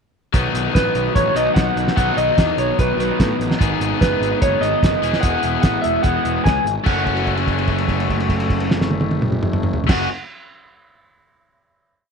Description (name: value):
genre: indie rock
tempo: 147 BPM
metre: 4/4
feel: straight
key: F# dorian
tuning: A4 = 440 Hz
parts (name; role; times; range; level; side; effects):
- crunchy overdriven guitar; riff; 0.3-10.1 s; F#3 to G#4; -23 LUFS; left 14 dB; none
- crunchy overdriven guitar; riff; 0.3-10.1 s; F#2 to F#4; -25 LUFS; right 14 dB; wide subtle chorus, slapback echo
- fuzz picked electric bass; bass; 0.3-10.1 s; E1 to A2; -24 LUFS; right 1 dB; overdrive
- cloth-damped thuddy drum kit; drums; 0.3-10.0 s; crash cymbal, hi-hat, kick drum, snare drum, toms; -19 LUFS; right 1 dB; none
- electric guitar through a small old amp; melody; 0.7-10.1 s; B4 to G#5; -20 LUFS; equal; slapback echo
- tonewheel organ; sustained chords; 3.6-10.1 s; B2 to G#4; -32 LUFS; left 12 dB; none
room: studio ambience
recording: 1960s-style stereo with parts hard left and right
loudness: -16 LUFS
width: side -6 dB against mid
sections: 0.3-6.9 pre-chorus; 6.9-10.1 final chord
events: held note 6.9-9.9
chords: 0.3 B; 3.6 G#m; 5.0 E; 6.9 F#madd9